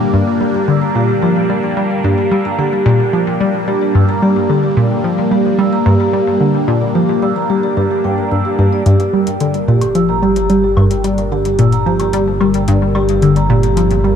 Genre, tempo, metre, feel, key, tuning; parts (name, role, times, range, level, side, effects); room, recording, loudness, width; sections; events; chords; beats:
ambient, sequencer-driven space music; 110 BPM; 4/4; straight; G minor; A4 = 440 Hz
phased analog pad; sustained chords; 0.0-14.2 s; G3 to D4; -19 LUFS; equal; phaser, chorus
vibraphone with soft mallets; arpeggios; 0.0-14.2 s; G4 to E6; -18 LUFS; right 1 dB; auto-pan, low-pass filter, ping-pong delay
analog pluck; riff; 0.1-14.2 s; G2 to G3; -14 LUFS; left 1 dB; chorus, vintage 12-bit sampler grit, ping-pong delay
analog drone; bass; 9.9-14.2 s; G1; -19 LUFS; equal; chorus, phaser
electronic hi-hat and woodblock; percussion; 8.9-14.0 s; -31 LUFS; left 2 dB; ping-pong delay
moderate huge ambient reverb, RT60 8.0 s; dark, warm production; -11 LUFS; side -8 dB against mid
0.0-8.9 A section; 8.9-14.2 B section
fade-in on analog synth pad 8.9-14.2
0.0 Gm
| 0.13 0.68 1.23 1.77 | 2.32 2.86 3.41 3.95 | 4.50 5.04 5.59 6.13 | 6.68 7.22 7.77 8.32 | 8.86 9.41 9.95 10.50 | 11.04 11.59 12.13 12.68 | 13.22 13.77